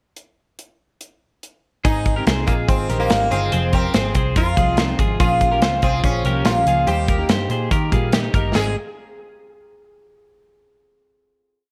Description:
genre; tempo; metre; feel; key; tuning
jangly indie pop; 143 BPM; 4/4; straight; Ab major; A4 = 440 Hz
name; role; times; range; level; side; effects
modern studio drum kit; drums; 0.2-8.7 s; crash cymbal, hi-hat, kick drum, snare drum; -22 LUFS; equal; gated reverb
sitar; melody; 1.8-8.8 s; Bb3 to Ab4; -25 LUFS; equal; none
picked steel-string acoustic guitar; accompaniment; 1.8-8.7 s; F2 to Eb4; -30 LUFS; equal; none
twelve-string electric guitar; arpeggios; 1.8-8.8 s; C4 to C5; -28 LUFS; equal; none
vintage muted picked electric bass; bass; 1.8-8.7 s; F1 to Eb3; -25 LUFS; equal; none
room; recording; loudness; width
light reverb, small room ambience; none; -19 LUFS; mono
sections
0.2-1.9 pickup bar; 1.9-8.6 verse; 8.6-10.2 final chord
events
none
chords
0.2 N.C.; 1.9 Ab; 3.5 Fm; 5.2 Bbm; 6.9 Eb; 8.6 Ab5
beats
| 0.17 0.59 1.01 1.43 | 1.85 2.27 2.69 3.11 | 3.53 3.95 4.37 4.79 | 5.20 5.62 6.04 6.46 | 6.88 7.30 7.72 8.14 | 8.56

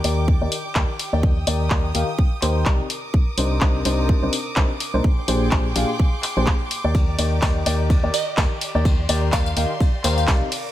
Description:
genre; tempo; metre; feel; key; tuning
piano house; 126 BPM; 4/4; swing 56% on 16ths; Eb major; A4 = 439 Hz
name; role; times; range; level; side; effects
rich chamber violin section; sustained chords; 0.0-10.7 s; G4 to Eb6; -32 LUFS; right 1 dB; sidechain pumping
clear grand piano; riff; 0.0-10.5 s; Bb2 to F5; -25 LUFS; left 2 dB; sidechain pumping, low-pass filter, tape echo
organ-like FM bass; bass; 0.0-10.4 s; Bb1 to Eb2; -22 LUFS; equal; sidechain pumping
house drum kit; drums; 0.0-10.6 s; handclaps, hi-hat; -26 LUFS; left 1 dB; none
electronic kick drum; drums; 0.3-10.4 s; none; -19 LUFS; equal; none
vintage brush drum kit; drums; 6.9-10.6 s; hi-hat, ride cymbal, snare drum; -34 LUFS; left 2 dB; sidechain pumping on cymbals, high-pass filter on cymbals, sidechain pumping on hats, high-pass filter on hats, high-pass filter on snare, high-pass filter on room
glassy wavetable pluck; melody; 8.1-10.2 s; Eb5 to F5; -27 LUFS; right 1 dB; chorus, tape echo
room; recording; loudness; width
little or no reverb; none; -18 LUFS; side -13 dB against mid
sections
0.0-10.7 A section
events
none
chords
0.0 Ebmaj7; 2.9 Cm9; 5.0 Bb13; 6.9 Ebmaj7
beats
0.28 0.76 | 1.23 1.71 2.19 2.66 | 3.14 3.61 4.09 4.57 | 5.04 5.52 6.00 6.47 | 6.95 7.42 7.90 8.38 | 8.85 9.33 9.80 10.28

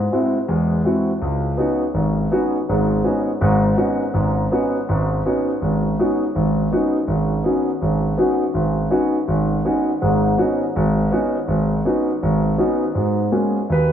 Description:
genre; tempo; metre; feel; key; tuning
jazz; 164 BPM; 4/4; swing 63% on 8ths; unclear; A4 = 440 Hz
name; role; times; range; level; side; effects
dark concert grand piano; solo; 0.0-13.9 s; G#1 to B4; -17 LUFS; equal; lush chorus, tape echo
room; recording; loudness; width
moderate plate reverb, RT60 3.1 s; dreamy mix soaked in reverb; -17 LUFS; side -9 dB against mid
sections
0.0-1.2 A section; 1.2-12.9 B section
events
none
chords
0.0 G#aug7; 1.2 C#9sus4; 12.9 G#m11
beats
0.11 0.47 0.84 | 1.21 1.57 1.94 2.31 | 2.67 3.04 3.41 3.77 | 4.14 4.51 4.87 5.24 | 5.61 5.97 6.34 6.70 | 7.07 7.44 7.80 8.17 | 8.54 8.90 9.27 9.64 | 10.01 10.37 10.74 11.11 | 11.48 11.85 12.21 12.58 | 12.95 13.32 13.69

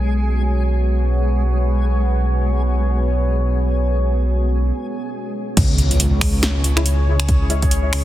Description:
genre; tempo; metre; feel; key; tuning
deep dubstep; free time; none; none; unclear; A4 = 442 Hz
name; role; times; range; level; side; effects
deep dark ambient pad; sustained chords; 0.0-8.0 s; B3 to C#5; -25 LUFS; equal; chorus, built-in reverb
dark detuned saw bass; bass; 0.0-8.0 s; B1 to C#2; -17 LUFS; equal; none
backwards swelling texture; texture; 0.0-4.7 s; G#3 to G#4; -28 LUFS; right 1 dB; built-in reverb
deep house drum kit; drums; 5.6-8.0 s; crash cymbal, finger snaps, hi-hat, snare drum; -22 LUFS; equal; overdrive
electronic kick drum; drums; 5.6-7.7 s; none; -18 LUFS; equal; overdrive
impact; sound effects; 5.6-7.3 s; none; -26 LUFS; equal; none
filtered dub chord stab; stabs; 6.8-7.6 s; G#3 to E4; -27 LUFS; left 2 dB; phaser, analog chorus, dub echo
room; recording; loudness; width
light reverb, digital ambience; dense, heavily limited modern master; -16 LUFS; side -14 dB against mid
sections
0.0-5.6 A section; 5.6-8.0 B section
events
break 4.7-5.6; drop 5.6-8.0; impact 5.6-7.3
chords
0.0 B5; 5.6 C#5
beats
free time

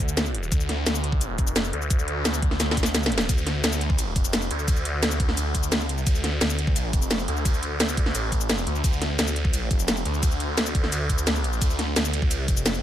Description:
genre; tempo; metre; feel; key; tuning
dark technical drum and bass; 173 BPM; 4/4; straight; D minor; A4 = 439 Hz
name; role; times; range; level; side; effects
phased detuned saw bass; bass; 0.0-12.8 s; F1 to D2; -26 LUFS; equal; phaser, tube saturation, sidechain pumping
drum and bass drum kit; drums; 0.0-12.8 s; hi-hat, ride cymbal, shaker, snare drum; -26 LUFS; equal; none
electronic kick drum; drums; 0.0-12.6 s; none; -23 LUFS; equal; none
room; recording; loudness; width
little or no reverb; none; -22 LUFS; side -11 dB against mid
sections
0.0-12.8 A section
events
drum fill 2.6-3.3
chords
none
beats
0.17 | 0.52 0.86 1.21 1.56 | 1.90 2.25 2.60 2.94 | 3.29 3.64 3.98 4.33 | 4.68 5.03 5.37 5.72 | 6.07 6.41 6.76 7.11 | 7.45 7.80 8.15 8.49 | 8.84 9.19 9.53 9.88 | 10.23 10.57 10.92 11.27 | 11.62 11.96 12.31 12.66

